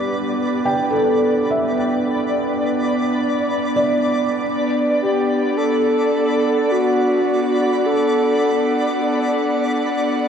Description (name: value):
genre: ambient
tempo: free time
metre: none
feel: none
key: unclear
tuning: A4 = 439 Hz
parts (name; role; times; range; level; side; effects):
- airy breathy pad; sustained chords; 0.0-10.3 s; B3 to F#5; -19 LUFS; equal; chorus
- felt-muted upright piano; arpeggios; 0.0-10.3 s; G3 to G5; -23 LUFS; right 1 dB; tape echo
- twinkling granular texture; texture; 0.0-10.3 s; D5 to B5; -25 LUFS; left 1 dB; built-in reverb
- breathy flute-like synth lead; melody; 5.0-8.7 s; F#4 to A4; -20 LUFS; equal; chorus, tremolo, tape echo
room: wet concert hall reverb, RT60 2.4 s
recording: worn, warbling old tape, cassette tape, warbly pitch drift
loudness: -16 LUFS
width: side -7 dB against mid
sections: 0.0-10.3 A section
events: none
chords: 0.0 G; 4.4 Bm7